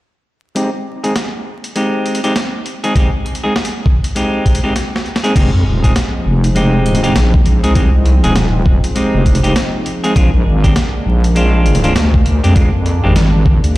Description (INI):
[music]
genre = glitch hop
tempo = 100 BPM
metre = 4/4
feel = swing 61% on 16ths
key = F dorian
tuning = A4 = 442 Hz
[part]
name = clean electric guitar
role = stabs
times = 0.6-13.1 s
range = Ab3 to Ab4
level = -18 LUFS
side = equal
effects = vintage 12-bit sampler grit, sidechain pumping, low-pass filter, dub echo
[part]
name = boom bap sampler-style drum kit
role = drums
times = 0.6-13.7 s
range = crash cymbal, hi-hat, snare drum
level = -21 LUFS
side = equal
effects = none
[part]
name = electronic kick drum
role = drums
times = 3.0-13.6 s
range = none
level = -13 LUFS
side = equal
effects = none
[part]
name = warm analog pad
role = sustained chords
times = 5.4-13.8 s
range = F3 to Eb4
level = -22 LUFS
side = equal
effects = chorus, tremolo, sidechain pumping
[part]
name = wobble bass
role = bass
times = 5.4-13.8 s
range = Eb1 to F2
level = -12 LUFS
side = equal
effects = chorus, tube saturation
[sound]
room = little or no reverb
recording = played on a big sound system in a bare room, large studio reverb, vinyl crackle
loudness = -11 LUFS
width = side -18 dB against mid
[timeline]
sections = 0.6-5.4 A section; 5.4-13.8 B section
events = filter sweep on clean electric guitar 0.6-5.4; drum fill 4.8-5.4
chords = 0.6 Abmaj7; 5.4 Fm7; 10.2 Bb7